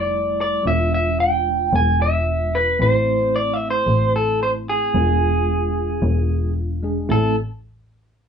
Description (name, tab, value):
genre	straight-eighth soul blues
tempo	112 BPM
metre	4/4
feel	swing 54% on 16ths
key	A minor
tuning	A4 = 437 Hz
part	electric guitar through a small old amp	melody	0.0-7.4 s	G#4 to G#5	-19 LUFS	right 1 dB	none
part	tine electric piano	accompaniment	0.0-7.3 s	G3 to G#4	-26 LUFS	right 2 dB	medium stereo tremolo
part	muted double bass	bass	0.0-7.3 s	E1 to A1	-21 LUFS	left 1 dB	none
room	light reverb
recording	band playing live in one room, nothing above 10.5 kHz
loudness	-17 LUFS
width	side -7 dB against mid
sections	0.0-7.1 A section; 7.1-8.3 B section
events	none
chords	0.0 Fmaj7; 0.7 E7b9; 2.8 Am; 4.9 E7b9; 7.1 Am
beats	0.12 | 0.65 1.19 1.73 2.27 | 2.80 3.34 3.88 4.41 | 4.95 5.48 6.02 6.56 | 7.09